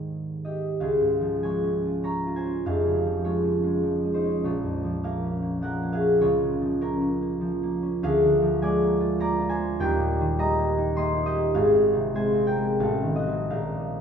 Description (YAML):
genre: classical, solo harp piece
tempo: 82-104 BPM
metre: 3/4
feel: rubato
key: Db major, Eb major from 8.0 s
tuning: A4 = 440 Hz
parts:
  - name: concert harp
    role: solo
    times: 0.0-14.0 s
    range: Eb1 to C6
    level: -22 LUFS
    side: equal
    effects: none
room: light reverb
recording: close, detailed microphones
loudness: -22 LUFS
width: side -7 dB against mid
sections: 0.8-14.0 A section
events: none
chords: 0.0 Ab5; 0.8 Db; 2.7 Db/F; 4.4 Bbm; 6.2 Bbm/Db; 8.0 Bb7/D; 9.8 Eb; 11.6 Fm/Ab; 12.8 Adim7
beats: 0.10 | 0.81 1.44 2.05 | 2.66 3.26 3.84 | 4.43 5.03 5.61 | 6.20 6.80 7.40 | 8.03 8.63 9.22 | 9.81 10.40 10.99 | 11.57 12.17 12.82 | 13.53